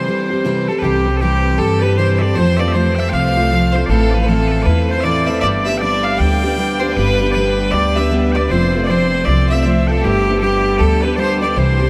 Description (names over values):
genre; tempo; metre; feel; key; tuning
celtic folk, Celtic hornpipe; 156 BPM; 4/4; swing 62% on 8ths; C major; A4 = 440 Hz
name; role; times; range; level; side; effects
bright fiddle; melody; 0.0-11.9 s; G4 to G5; -21 LUFS; equal; none
loud bright bagpipes; second line; 0.0-11.9 s; G4 to G5; -26 LUFS; equal; none
picked steel-string acoustic guitar; accompaniment; 0.0-11.9 s; A2 to G4; -20 LUFS; equal; none
upright bass; bass; 0.8-11.9 s; F1 to G2; -20 LUFS; equal; none
room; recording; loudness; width
wet huge ambient reverb, RT60 8.1 s; in a vast, echoing space; -15 LUFS; mono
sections
0.8-11.9 A section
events
none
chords
0.0 C; 2.4 F; 3.9 Am; 5.4 G; 8.5 F; 10.0 G